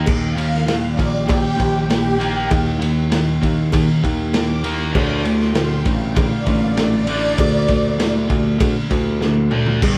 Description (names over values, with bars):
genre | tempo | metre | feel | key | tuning
classic rock | 98 BPM | 4/4 | straight | unclear | A4 = 440 Hz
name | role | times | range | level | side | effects
crunchy overdriven guitar | riff | 0.0-10.0 s | G2 to Eb4 | -27 LUFS | equal | none
distorted electric guitar | riff | 0.0-10.0 s | G2 to Eb4 | -24 LUFS | equal | distortion
picked electric bass | bass | 0.0-10.0 s | G1 to Eb2 | -24 LUFS | equal | none
string machine, violins | sustained chords | 0.1-10.0 s | D4 to D6 | -27 LUFS | equal | ensemble chorus
vintage drum kit | drums | 0.1-10.0 s | crash cymbal, kick drum, ride cymbal, snare drum, toms | -23 LUFS | equal | none
cowbell | percussion | 0.1-10.0 s | none | -32 LUFS | equal | none
room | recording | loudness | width
moderate stone room reverb, RT60 1.3 s | band playing live in one room | -18 LUFS | mono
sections
0.0-9.8 A section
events
string machine solo 0.0-9.8; drum fill 9.2-9.8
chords
0.0 Eb; 5.0 D5